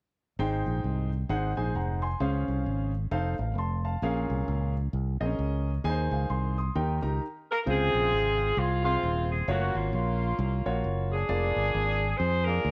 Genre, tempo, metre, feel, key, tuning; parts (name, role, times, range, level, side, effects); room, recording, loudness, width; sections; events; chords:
uptempo gospel; 132 BPM; 4/4; swing 60% on 8ths; A4 = 440 Hz
clear grand piano; accompaniment; 0.4-12.7 s; Ab2 to Eb6; -34 LUFS; equal
fingered electric bass; bass; 0.4-12.7 s; Eb1 to F2; -31 LUFS; equal
clear saxophone section; melody; 7.5-12.7 s; Ab3 to C5; -30 LUFS; equal; slapback echo
light reverb, small room ambience; -29 LUFS; mono
0.4-7.7 A section; 7.7-12.7 B section
stop 7.2-7.7
0.4 Abmaj7; 1.3 Ab7; 2.2 Dbmaj7; 3.1 F7; 4.0 Bbm7; 5.8 Ab; 6.8 Eb; 7.7 Dbmaj7; 9.5 Gbmaj7; 11.3 Bb7/F